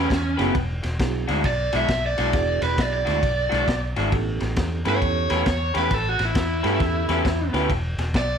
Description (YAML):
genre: electric blues shuffle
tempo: 134 BPM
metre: 4/4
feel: swing 64% on 8ths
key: unclear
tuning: A4 = 439 Hz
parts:
  - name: overdriven electric guitar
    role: melody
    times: 0.0-8.4 s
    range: C#4 to E5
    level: -24 LUFS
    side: right 2 dB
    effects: spring reverb
  - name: electric guitar through a small old amp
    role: riff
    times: 0.0-8.2 s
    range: E3 to B4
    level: -27 LUFS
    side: left 2 dB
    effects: none
  - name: vintage muted fingered electric bass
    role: bass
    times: 0.0-8.4 s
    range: E1 to G2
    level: -26 LUFS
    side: equal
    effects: none
  - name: crunchy breakbeat drum kit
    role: drums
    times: 0.1-8.3 s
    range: kick drum, ride cymbal, snare drum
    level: -27 LUFS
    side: equal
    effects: none
  - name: mellow reed electric piano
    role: accompaniment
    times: 0.4-7.7 s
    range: B3 to B4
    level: -30 LUFS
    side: right 9 dB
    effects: fast tremolo
room: little or no reverb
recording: none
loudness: -20 LUFS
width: side -7 dB against mid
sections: 0.0-8.4 A section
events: overdriven electric guitar solo 0.0-8.4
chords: 0.0 A9; 0.5 E9; 4.1 A9; 7.7 E7(no3)